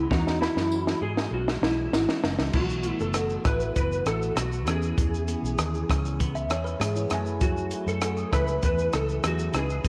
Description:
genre	indie pop, bedroom pop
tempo	99 BPM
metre	4/4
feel	straight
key	E major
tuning	A4 = 439 Hz
part	electric slide guitar	melody	0.0-9.9 s	D#4 to B4	-32 LUFS	equal	ensemble chorus, tape echo
part	electric guitar through a small old amp	accompaniment	0.0-9.9 s	F#2 to G#4	-39 LUFS	equal	lush chorus, warbly pitch drift
part	warbly lo-fi synth keys	accompaniment	0.0-9.9 s	E3 to G#5	-37 LUFS	equal	chorus, phaser, cassette tape
part	vintage muted fingered electric bass	bass	0.0-9.9 s	F#1 to G#2	-32 LUFS	equal	none
part	compact cocktail drum kit	drums	0.1-9.9 s	crash cymbal, hi-hat, kick drum, rim click, shaker, snare drum	-30 LUFS	equal	none
part	tambourine	percussion	0.7-2.1 s	none	-48 LUFS	equal	none
part	kalimba	second line	6.4-7.2 s	E4 to E5	-38 LUFS	equal	analog chorus, tape echo
room	light reverb, small room ambience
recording	none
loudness	-26 LUFS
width	mono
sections	0.0-2.5 A section; 2.5-9.9 B section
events	drum fill 0.1-2.5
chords	0.1 E69; 2.5 B7sus4; 4.7 E6; 7.1 F#m9

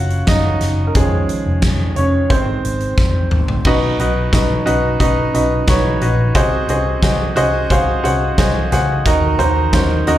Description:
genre	piano-driven pop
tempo	89 BPM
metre	4/4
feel	straight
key	unclear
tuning	A4 = 438 Hz
part	bright upright piano	accompaniment	0.0-10.2 s	Cb3 to Gb5	-17 LUFS	right 1 dB	plate reverb, slapback echo
part	vintage muted picked electric bass	bass	0.0-10.2 s	F1 to Eb2	-19 LUFS	equal	none
part	huge arena drum kit	drums	0.1-10.2 s	crash cymbal, hi-hat, kick drum, snare drum, toms	-18 LUFS	equal	none
room	moderate club reverb, RT60 0.5 s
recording	live gig heard through the venue's PA, club reverb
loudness	-13 LUFS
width	side -13 dB against mid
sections	0.0-3.7 A section; 3.7-10.2 B section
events	upright piano solo 0.0-3.7; drum fill 3.0-3.7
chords	0.0 Gbsus2; 1.0 Dbadd9/F; 2.3 Ab; 3.7 Cb; 6.4 Ab7/C; 9.1 Ebm

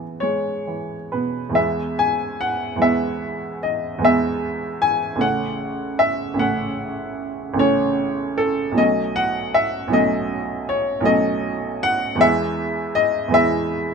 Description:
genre	classical, romantic nocturne for solo piano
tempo	43-54 BPM (dotted quarters)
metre	9/8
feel	rubato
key	E major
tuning	A4 = 440 Hz
part	clear upright piano	solo	0.0-13.9 s	A1 to G#5	-18 LUFS	equal	none
room	light reverb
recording	close, detailed microphones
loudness	-18 LUFS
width	side -5 dB against mid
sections	0.0-1.6 A section; 1.6-13.9 B section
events	none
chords	0.0 E; 5.2 F#m/A; 8.8 B9; 12.2 E

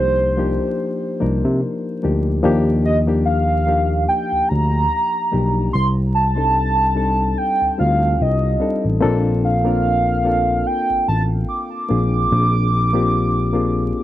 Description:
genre	R&B, neo-soul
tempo	73 BPM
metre	4/4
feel	swing 55% on 16ths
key	C dorian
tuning	A4 = 440 Hz
part	hollow square lead	melody	0.0-14.0 s	C5 to D6	-20 LUFS	right 1 dB	chorus
part	bright reed electric piano	accompaniment	0.0-14.0 s	F3 to Bb4	-22 LUFS	left 4 dB	overdrive
part	barky tine electric piano	bass	0.0-13.9 s	A1 to C3	-19 LUFS	equal	overdrive
room	little or no reverb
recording	dry, close 1970s-style studio recording, vinyl crackle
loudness	-16 LUFS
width	side -13 dB against mid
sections	0.0-2.4 A section; 2.4-14.0 B section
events	none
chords	0.0 Cm11; 2.4 Ebmaj9; 5.7 Cm69; 9.0 Bbmaj9; 11.9 Bb7

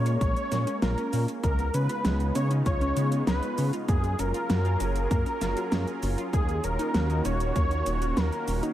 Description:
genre	synthwave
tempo	98 BPM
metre	4/4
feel	straight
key	unclear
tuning	A4 = 440 Hz
part	wide unison lead	melody	0.0-8.6 s	Ab4 to Db5	-31 LUFS	equal	digital delay
part	lush unison pad	sustained chords	0.0-8.7 s	Db3 to Bb4	-34 LUFS	right 1 dB	chorus, sidechain pumping
part	dark detuned saw bass	bass	0.0-8.6 s	Eb1 to Db3	-27 LUFS	equal	sidechain pumping
part	wide unison pluck	arpeggios	0.1-8.7 s	Ab3 to Gb4	-35 LUFS	left 1 dB	digital delay
part	pop drum kit	drums	0.1-8.7 s	cabasa, hi-hat, snare drum	-31 LUFS	equal	overdrive
part	electronic kick drum	drums	0.2-7.7 s	none	-26 LUFS	equal	overdrive
room	light reverb, digital ambience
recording	none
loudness	-24 LUFS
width	side -12 dB against mid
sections	0.0-8.7 A section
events	none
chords	0.0 Bbm7; 1.4 Db7; 3.9 Gbmaj7; 6.3 Ebm7

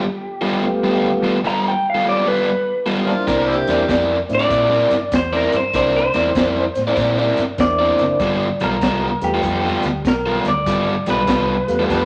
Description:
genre	electric blues shuffle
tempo	98 BPM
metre	4/4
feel	swing 65% on 8ths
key	G mixolydian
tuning	A4 = 440 Hz
part	electric guitar through a small old amp	melody	0.0-12.1 s	G4 to Bb5	-23 LUFS	equal	phaser
part	crunchy overdriven guitar	riff	0.0-12.1 s	G3 to D5	-21 LUFS	equal	none
part	mellow tonewheel organ	accompaniment	0.6-12.1 s	G3 to G4	-25 LUFS	equal	slow rotary speaker, chorus vibrato
part	overdriven harmonica	second line	3.1-4.1, 11.9-12.1 s	Bb3 to B4	-26 LUFS	equal	none
part	vintage muted fingered electric bass	bass	3.3-12.1 s	F#1 to Bb2	-29 LUFS	equal	none
part	crunchy breakbeat drum kit	drums	3.3-12.1 s	hi-hat, kick drum, snare drum	-26 LUFS	equal	none
room	wet large studio reverb, RT60 1.2 s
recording	none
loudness	-18 LUFS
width	mono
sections	0.0-12.1 A section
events	none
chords	0.0 G9; 3.3 C9; 8.2 G9

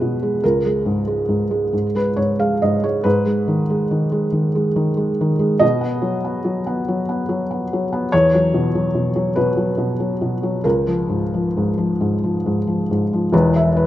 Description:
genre	neoclassical minimalist piano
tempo	44-49 BPM (dotted quarters)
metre	6/8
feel	rubato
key	unclear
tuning	A4 = 440 Hz
part	felt-muted upright piano	solo	0.0-13.9 s	E1 to E#5	-16 LUFS	equal	none
room	light reverb, studio reverb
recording	rough home demo mix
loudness	-17 LUFS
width	side -13 dB against mid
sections	0.0-13.3 A section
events	none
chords	0.4 C#5; 3.0 G#m; 5.6 B; 8.1 Esus2; 10.6 C#6; 13.3 E5

